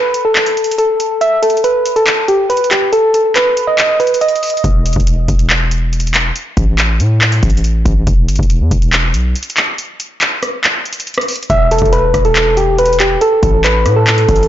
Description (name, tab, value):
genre	hip hop, trap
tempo	140 BPM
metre	4/4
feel	half-time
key	E harmonic minor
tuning	A4 = 440 Hz
part	soft electric-piano-like synth keys	melody	0.0-4.6, 11.5-14.5 s	G4 to E5	-12 LUFS	right 1 dB	chorus, ping-pong delay
part	booming analog drum machine	drums	0.1-14.5 s	handclaps, hi-hat, kick drum, rim click	-15 LUFS	equal	none
part	hard-hitting 808-style bass	bass	4.6-14.5 s	E1 to A2	-14 LUFS	equal	none
room	light reverb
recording	blown-out, overdriven recording, overdrive, nothing above 7.6 kHz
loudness	-10 LUFS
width	side -12 dB against mid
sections	0.0-14.5 A section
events	break 0.0-4.6, 9.8-11.5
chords	0.0 N.C.; 11.5 Emadd11; 13.2 Asus2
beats	0.36 0.78 | 1.21 1.64 2.07 2.50 | 2.93 3.36 3.78 4.21 | 4.64 5.07 5.50 5.93 | 6.36 6.78 7.21 7.64 | 8.07 8.50 8.93 9.36 | 9.78 10.21 10.64 11.07 | 11.50 11.93 12.36 12.78 | 13.21 13.64 14.07